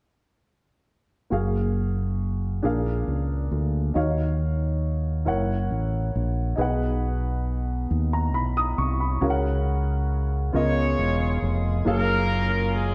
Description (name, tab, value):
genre	slow gospel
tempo	46 BPM (dotted quarters)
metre	6/8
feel	straight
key	F# major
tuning	A4 = 440 Hz
part	warm upright piano	accompaniment	1.3-12.9 s	A#2 to D#6	-30 LUFS	equal	none
part	fingered electric bass	bass	1.3-12.9 s	E1 to D#2	-27 LUFS	equal	none
part	clear horn section	melody	10.6-12.9 s	G#3 to C#5	-28 LUFS	equal	slapback echo
room	moderate recital hall reverb, RT60 1.5 s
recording	none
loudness	-25 LUFS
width	mono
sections	1.3-11.9 A section; 11.9-12.9 B section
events	none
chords	1.3 F#maj9; 2.6 A#7; 4.0 D#m9; 5.3 F#7; 6.6 B6; 9.2 F#/C#; 10.5 C#13; 11.9 F#maj9